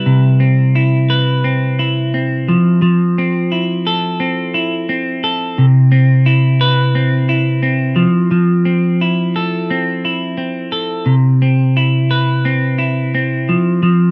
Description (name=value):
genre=indie pop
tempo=87 BPM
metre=4/4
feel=straight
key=C major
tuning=A4 = 440 Hz
part: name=clean electric guitar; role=solo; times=0.0-14.1 s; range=C3 to B4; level=-14 LUFS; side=equal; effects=subtle chorus, vibrato effect
room=light reverb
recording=rough home demo mix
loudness=-15 LUFS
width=mono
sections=0.1-14.1 A section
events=none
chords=0.1 Cmaj7; 2.5 Fmaj7; 5.6 Cmaj7; 8.0 Fmaj7; 11.1 Cmaj7; 13.5 Fmaj7(no3)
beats=| 0.07 0.76 1.45 2.14 | 2.83 3.52 4.21 4.89 | 5.58 6.27 6.96 7.65 | 8.33 9.02 9.71 10.40 | 11.08 11.77 12.46 13.14 | 13.83